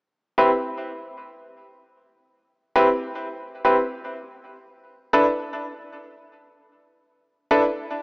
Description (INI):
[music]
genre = glitch hop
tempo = free time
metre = none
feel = none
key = unclear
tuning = A4 = 440 Hz
[part]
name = bright concert grand piano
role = stabs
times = 0.4-7.6 s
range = C4 to B4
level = -20 LUFS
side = equal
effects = low-pass filter, digital delay
[sound]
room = moderate lush hall reverb, RT60 2.7 s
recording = small speaker sound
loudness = -19 LUFS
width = side -34 dB against mid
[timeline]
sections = 0.0-8.0 A section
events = none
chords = 0.0 Cmaj7; 4.1 E7sus4